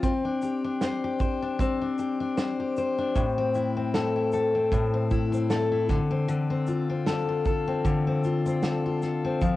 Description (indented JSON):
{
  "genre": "acoustic pop",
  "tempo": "77 BPM",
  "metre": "4/4",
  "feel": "swing 55% on 16ths",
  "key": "C major",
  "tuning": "A4 = 441 Hz",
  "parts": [
    { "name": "picked steel-string acoustic guitar", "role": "accompaniment", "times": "0.0-9.6 s", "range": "A2 to C5", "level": "-24 LUFS", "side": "left 3 dB", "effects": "none" },
    { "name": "natural country drum kit", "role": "drums", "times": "0.0-9.6 s", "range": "kick drum, shaker, snare drum", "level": "-29 LUFS", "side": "right 2 dB", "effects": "cassette tape" }
  ],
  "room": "small room ambience",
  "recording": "home recording on cassette",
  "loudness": "-24 LUFS",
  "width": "side -15 dB against mid",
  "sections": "0.0-9.6 A section",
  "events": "none",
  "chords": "0.0 Csus2; 3.2 Am; 5.9 Dm7"
}